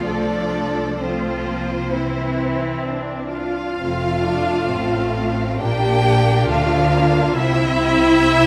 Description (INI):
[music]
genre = classical, slow romantic movement for string orchestra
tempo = 63-69 BPM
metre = 4/4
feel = rubato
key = F major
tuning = A4 = 440 Hz
[part]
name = rich chamber violin section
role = melody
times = 0.0-8.5 s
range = C5 to G5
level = -26 LUFS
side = equal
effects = none
[part]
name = clear chamber violin section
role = second line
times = 0.0-8.5 s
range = A3 to E4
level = -27 LUFS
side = equal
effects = none
[part]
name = rich chamber viola section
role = accompaniment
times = 0.0-8.5 s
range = E3 to G4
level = -23 LUFS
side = equal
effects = none
[part]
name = clear studio double bass section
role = bass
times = 0.0-8.5 s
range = F1 to D2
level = -25 LUFS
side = equal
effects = none
[part]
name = rich studio cello section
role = bass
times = 0.0-8.5 s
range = F2 to A4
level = -30 LUFS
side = equal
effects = none
[sound]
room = wet concert hall reverb, RT60 2.0 s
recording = none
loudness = -19 LUFS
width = mono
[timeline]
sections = 0.0-3.8 A section; 3.8-8.5 A section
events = none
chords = 0.1 F/C; 1.9 C; 3.8 F; 5.6 Bbmaj7; 7.4 C